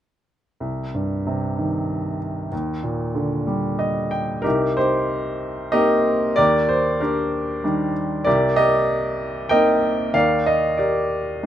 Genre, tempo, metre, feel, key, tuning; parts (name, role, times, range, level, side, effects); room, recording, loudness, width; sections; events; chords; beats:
classical, lyrical solo piano; 94 BPM; 3/4; rubato; C minor; A4 = 438 Hz
clear baby grand piano; solo; 0.6-11.5 s; C2 to G5; -19 LUFS; equal
light reverb; close, detailed microphones; -18 LUFS; side -11 dB against mid
0.6-4.4 A section; 4.4-11.5 B section
grand piano fill 3.5-4.4
0.6 Cm; 2.5 Ebmaj7; 4.4 Cm7; 6.4 Ebmaj7; 8.3 Cm7; 10.1 Ebmaj7
| 0.61 1.26 1.89 | 2.52 3.15 3.79 | 4.45 5.10 5.74 | 6.38 7.01 7.64 | 8.26 8.88 9.51 | 10.14 10.79 11.44